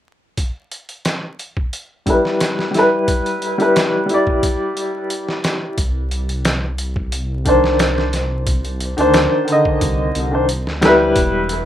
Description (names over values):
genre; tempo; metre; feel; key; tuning
trip hop; 89 BPM; 4/4; straight; unclear; A4 = 435 Hz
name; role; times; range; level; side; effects
trip hop sampler-style drum kit; drums; 0.4-11.7 s; hi-hat, kick drum, snare drum; -21 LUFS; equal; small room ambience
warm upright piano; accompaniment; 2.1-11.5 s; D3 to Eb5; -15 LUFS; left 1 dB; tremolo, low-pass filter, tape echo
dark detuned saw bass; bass; 5.8-11.7 s; E1 to D2; -22 LUFS; equal; none
room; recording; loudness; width
light reverb; rough home demo mix, vinyl crackle; -15 LUFS; side -11 dB against mid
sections
0.4-11.2 A section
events
filter sweep on upright piano 0.4-11.2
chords
0.4 Em; 5.8 Cmadd9